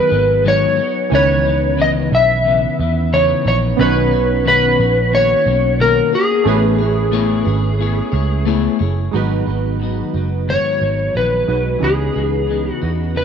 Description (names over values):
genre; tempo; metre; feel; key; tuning
indie pop, bedroom pop; 90 BPM; 4/4; swing 55% on 16ths; G# minor; A4 = 438 Hz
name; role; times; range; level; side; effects
electric slide guitar; melody; 0.0-13.2 s; G#4 to E5; -16 LUFS; left 2 dB; lush chorus, tape echo
clean electric guitar; accompaniment; 0.0-13.2 s; G#2 to C#5; -21 LUFS; left 9 dB; wide subtle chorus, vibrato effect
warm analog keys; accompaniment; 0.0-13.2 s; D#3 to C#5; -23 LUFS; right 14 dB; chorus
vintage muted picked electric bass; bass; 0.1-13.2 s; F#1 to E2; -19 LUFS; right 2 dB; none
room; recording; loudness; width
moderate plate reverb, RT60 2.7 s; 1960s-style stereo with parts hard left and right; -13 LUFS; side -7 dB against mid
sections
0.0-9.1 A section; 9.1-13.2 B section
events
none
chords
0.0 G#m7; 1.1 C#m9; 3.8 Bmaj9; 6.5 Amaj9; 9.1 G#m7; 11.8 C#m9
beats
0.45 | 1.12 1.79 2.46 3.12 | 3.79 4.46 5.13 5.80 | 6.47 7.13 7.80 8.47 | 9.14 9.81 10.48 11.15 | 11.82 12.49 13.16